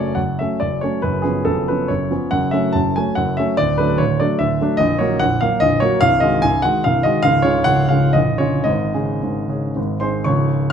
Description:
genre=classical, romantic triple-time dance for piano with dotted rhythms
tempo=106-157 BPM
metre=3/4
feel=rubato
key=F# minor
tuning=A4 = 441 Hz
part: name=warm grand piano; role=solo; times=0.0-10.7 s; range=Bb0 to Db6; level=-15 LUFS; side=equal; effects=none
room=moderate recital hall reverb, RT60 1.4 s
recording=close, detailed microphones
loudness=-15 LUFS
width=side -8 dB against mid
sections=0.0-10.3 A section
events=none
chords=0.0 F#m; 1.0 C#7/F#; 2.3 F#m; 3.6 D; 4.8 Gb/Bb; 6.0 Ab7/C; 7.2 Db; 8.2 Bbm; 8.7 Absus4; 9.8 Ab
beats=0.17 0.61 | 1.02 1.45 1.90 | 2.32 2.75 3.18 | 3.59 4.00 4.41 | 4.80 5.21 5.62 | 6.01 6.42 6.84 | 7.23 7.66 8.16 | 8.68 9.24 9.78 | 10.27 10.72

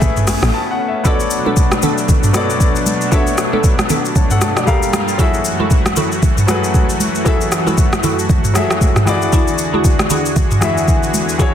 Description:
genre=amapiano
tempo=116 BPM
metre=4/4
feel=swing 58% on 16ths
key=B dorian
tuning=A4 = 440 Hz
part: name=warm grand piano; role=accompaniment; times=0.0-11.5 s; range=E3 to A5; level=-20 LUFS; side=left 3 dB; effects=none
part: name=lush unison pad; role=sustained chords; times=0.0-11.5 s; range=E2 to G#4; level=-20 LUFS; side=equal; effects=chorus
part: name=tight log drum bass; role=bass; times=0.0-0.5 s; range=A1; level=-18 LUFS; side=equal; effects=none
part: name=smooth R&B drum kit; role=drums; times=0.0-11.5 s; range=hi-hat, kick drum, rim click, shaker, toms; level=-15 LUFS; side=equal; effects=none
part: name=congas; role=percussion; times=0.0-11.3 s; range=none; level=-23 LUFS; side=right 3 dB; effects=none
part: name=glassy wavetable pluck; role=stabs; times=1.0-11.5 s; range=B3 to A4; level=-22 LUFS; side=equal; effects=chorus, tape echo
room=light reverb, digital ambience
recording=dense, heavily limited modern master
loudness=-12 LUFS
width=side -9 dB against mid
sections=0.0-1.1 A section; 1.1-11.5 B section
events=drop 0.0-1.1; grand piano fill 0.0-1.1, 4.2-5.2; break 0.5-1.1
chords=0.0 Amaj9; 1.1 Bm7; 4.7 Gm7; 5.2 F#m7; 9.1 E9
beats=0.02 0.53 | 1.05 1.57 2.09 2.60 | 3.12 3.64 4.16 4.67 | 5.19 5.71 6.22 6.74 | 7.26 7.78 8.29 8.81 | 9.33 9.85 10.36 10.88 | 11.40

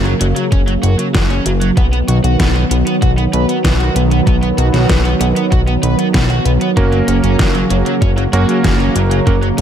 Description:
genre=synthwave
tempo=96 BPM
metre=4/4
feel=straight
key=F# major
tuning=A4 = 440 Hz
part: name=warm analog pad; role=sustained chords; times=0.0-9.6 s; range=C#3 to B3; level=-17 LUFS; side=right 2 dB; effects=chorus, sidechain pumping
part: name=fat analog bass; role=bass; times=0.0-9.6 s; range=F#1 to B1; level=-15 LUFS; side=equal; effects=none
part: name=overdriven electric guitar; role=riff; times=0.1-9.6 s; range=F#3 to B4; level=-21 LUFS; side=right 1 dB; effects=wide subtle chorus, digital delay
part: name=pop drum kit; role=drums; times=0.1-9.6 s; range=hi-hat, snare drum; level=-20 LUFS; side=equal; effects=overdrive
part: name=electronic kick drum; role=drums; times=0.5-9.4 s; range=none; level=-15 LUFS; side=equal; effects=overdrive
part: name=clear electric grand piano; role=stabs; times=6.8-9.4 s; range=A#3 to A#4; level=-18 LUFS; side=right 4 dB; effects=digital delay
room=light reverb, digital ambience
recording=none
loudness=-11 LUFS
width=side -9 dB against mid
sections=0.0-9.6 A section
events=none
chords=0.0 F#; 1.8 B; 6.8 F#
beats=0.52 1.14 | 1.77 2.39 3.02 3.64 | 4.27 4.89 5.52 6.14 | 6.77 7.39 8.02 8.64 | 9.27

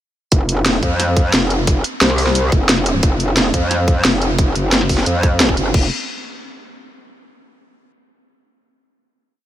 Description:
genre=dark technical drum and bass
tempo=177 BPM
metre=4/4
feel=straight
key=unclear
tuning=A4 = 440 Hz
part: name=metallic wobble bass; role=bass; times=0.3-5.9 s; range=F1 to F2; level=-17 LUFS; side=equal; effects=chorus, tube saturation, sidechain pumping
part: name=drum and bass drum kit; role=drums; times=0.3-5.8 s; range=crash cymbal, hi-hat, snare drum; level=-17 LUFS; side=equal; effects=none
part: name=electronic kick drum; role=drums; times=0.3-5.8 s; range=none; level=-16 LUFS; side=equal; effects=none
room=light reverb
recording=none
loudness=-13 LUFS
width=side -12 dB against mid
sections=0.3-5.7 drop; 5.7-7.1 final note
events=drop 0.3-5.7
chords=none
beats=| 0.32 0.66 1.00 1.33 | 1.67 2.01 2.35 2.69 | 3.03 3.37 3.71 4.05 | 4.39 4.72 5.06 5.40 | 5.74

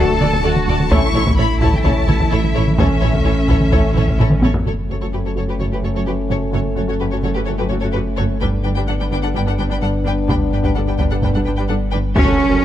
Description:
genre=cinematic, hybrid orchestral and electronic film score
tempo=128 BPM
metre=4/4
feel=straight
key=F# phrygian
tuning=A4 = 440 Hz
part: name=warm symphonic violin section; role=melody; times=0.0-4.2, 12.2-12.6 s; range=E5 to C#6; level=-24 LUFS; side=left 4 dB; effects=low-pass filter
part: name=warm symphonic violin section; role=second line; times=0.0-12.6 s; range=G4 to G5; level=-26 LUFS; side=left 3 dB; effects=none
part: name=warm symphonic viola section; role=accompaniment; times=0.0-12.6 s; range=G3 to A4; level=-27 LUFS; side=right 1 dB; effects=low-pass filter
part: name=deep rumbling drone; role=sustained chords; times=0.0-12.6 s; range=D3 to C#5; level=-25 LUFS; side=equal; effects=built-in reverb, low-pass filter
part: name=warm French horn section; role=sustained chords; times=0.0-12.6 s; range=A3 to C#5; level=-25 LUFS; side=left 4 dB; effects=low-pass filter
part: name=punchy sub bass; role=bass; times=0.0-12.6 s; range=D1 to A1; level=-22 LUFS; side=equal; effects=none
part: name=rich symphonic cello section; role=bass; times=0.0-12.6 s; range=F#2 to A4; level=-24 LUFS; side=right 2 dB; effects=none
part: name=rich symphonic double bass section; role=bass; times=0.0-12.6 s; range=F#1 to F#2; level=-24 LUFS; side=right 3 dB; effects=none
part: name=taiko ensemble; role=drums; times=0.2-5.6, 8.4-12.6 s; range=none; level=-18 LUFS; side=equal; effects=none
part: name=impact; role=sound effects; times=12.2-12.6 s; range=none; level=-24 LUFS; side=equal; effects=none
room=light reverb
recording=close, detailed microphones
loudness=-15 LUFS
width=side -12 dB against mid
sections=0.0-4.7 A section; 4.7-12.2 B section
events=drum fill 4.2-4.7; filter sweep 4.7-12.2; impact 12.2-12.6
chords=0.0 D; 0.9 A; 4.7 F#m; 8.4 G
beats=0.45 | 0.91 1.38 1.85 2.32 | 2.79 3.26 3.73 4.20 | 4.66 5.13 5.60 6.07 | 6.54 7.01 7.48 7.95 | 8.41 8.88 9.35 9.82 | 10.29 10.76 11.23 11.70 | 12.16 12.63

